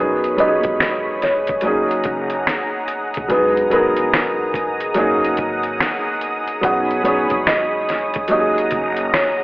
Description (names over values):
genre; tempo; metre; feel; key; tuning
lo-fi hip hop; 72 BPM; 4/4; swing 64% on 16ths; F# mixolydian; A4 = 440 Hz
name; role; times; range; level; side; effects
kalimba; melody; 0.0-9.4 s; A#4 to F#5; -21 LUFS; equal; none
felt-muted upright piano; accompaniment; 0.0-9.4 s; F#3 to A#4; -20 LUFS; equal; cassette tape
lush unison pad; sustained chords; 0.0-9.4 s; G#4 to D#6; -24 LUFS; equal; chorus
upright bass; bass; 0.0-9.1 s; E1 to B1; -33 LUFS; equal; none
lo-fi sampler-style drum kit; drums; 0.2-9.4 s; finger snaps, hi-hat, kick drum, snare drum; -22 LUFS; equal; vintage 12-bit sampler grit
room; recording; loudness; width
moderate plate reverb, RT60 3.1 s; vinyl crackle, telephone sound; -16 LUFS; side -21 dB against mid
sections
0.0-9.4 A section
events
none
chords
0.0 B69; 1.6 F#69; 3.3 Emaj9#11; 5.0 F#69; 6.6 B69; 8.3 F#69